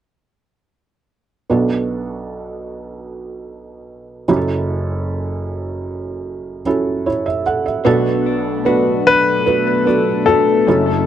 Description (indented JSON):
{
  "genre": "pop",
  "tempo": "75 BPM",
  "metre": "4/4",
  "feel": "straight",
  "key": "B minor",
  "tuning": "A4 = 438 Hz",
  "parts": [
    { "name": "felt-muted upright piano", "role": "accompaniment", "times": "1.5-11.1 s", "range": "F#1 to F#5", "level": "-18 LUFS", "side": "right 3 dB", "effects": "none" },
    { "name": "chorused pulse-width pad", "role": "sustained chords", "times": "7.9-11.1 s", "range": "F#3 to A4", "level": "-20 LUFS", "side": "left 4 dB", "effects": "none" },
    { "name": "direct-recorded clean electric guitar", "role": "arpeggios", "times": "7.9-11.1 s", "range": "F#2 to F#4", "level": "-24 LUFS", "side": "left 14 dB", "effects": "none" },
    { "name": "bright grand piano", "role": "melody", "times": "9.1-11.0 s", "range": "A4 to B4", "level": "-15 LUFS", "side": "left 4 dB", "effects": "tape echo" }
  ],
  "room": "light reverb",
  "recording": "dry, close 1970s-style studio recording",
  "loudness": "-15 LUFS",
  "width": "side -10 dB against mid",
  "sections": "1.5-7.9 A section; 7.9-11.1 B section",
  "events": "none",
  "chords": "1.5 Bm7; 4.3 F#m7; 7.9 Bm7"
}